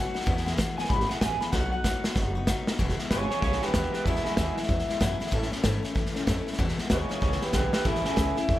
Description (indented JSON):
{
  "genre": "rockabilly",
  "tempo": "190 BPM",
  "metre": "4/4",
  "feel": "swing 63% on 8ths",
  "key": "E major",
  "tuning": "A4 = 442 Hz",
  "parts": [
    { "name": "electric guitar through a small old amp", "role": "melody", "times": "0.0-8.6 s", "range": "E4 to B5", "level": "-30 LUFS", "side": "equal", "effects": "wide subtle chorus, tape echo" },
    { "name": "picked steel-string acoustic guitar", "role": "accompaniment", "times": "0.0-8.6 s", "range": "E2 to G#4", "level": "-33 LUFS", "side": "left 4 dB", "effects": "none" },
    { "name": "upright bass", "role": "bass", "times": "0.1-8.6 s", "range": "E1 to A2", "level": "-31 LUFS", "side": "equal", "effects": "none" },
    { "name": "vintage drum kit", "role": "drums", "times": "0.2-8.6 s", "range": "hi-hat, kick drum, snare drum", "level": "-28 LUFS", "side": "equal", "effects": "none" }
  ],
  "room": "light reverb",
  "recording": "none",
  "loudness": "-24 LUFS",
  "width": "side -14 dB against mid",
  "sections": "0.0-2.8 A section; 2.8-8.6 B section",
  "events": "clean electric guitar solo 0.0-2.8; drum fill 1.5-2.8, 7.5-7.8",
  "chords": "0.3 E; 1.5 B; 2.8 E; 5.3 A; 6.6 E; 7.8 A"
}